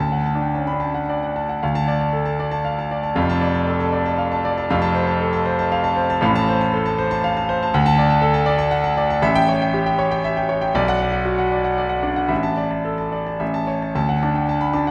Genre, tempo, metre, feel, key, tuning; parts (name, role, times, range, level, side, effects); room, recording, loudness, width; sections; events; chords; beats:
classical, virtuoso piano study; 108-123 BPM; 3/4; rubato; D minor, D major from 7.7 s; A4 = 441 Hz
clear concert grand piano; solo; 0.0-14.9 s; F1 to B5; -20 LUFS; equal
wet scoring stage reverb, RT60 1.6 s; -20 LUFS; mono
0.0-1.6 A section; 1.6-14.0 B section
0.0 D; 1.6 Dm; 3.2 Dm/F; 4.7 F; 6.2 F/A; 7.7 D; 9.2 A7; 10.7 Bm; 12.3 Asus4; 13.4 A; 14.0 D
0.53 1.08 | 1.62 2.14 2.65 | 3.17 3.68 4.19 | 4.70 5.20 5.71 | 6.22 6.72 7.22 | 7.72 8.21 8.71 | 9.22 9.72 10.22 | 10.73 11.24 11.77 | 12.30 12.86 13.41 | 13.95 14.48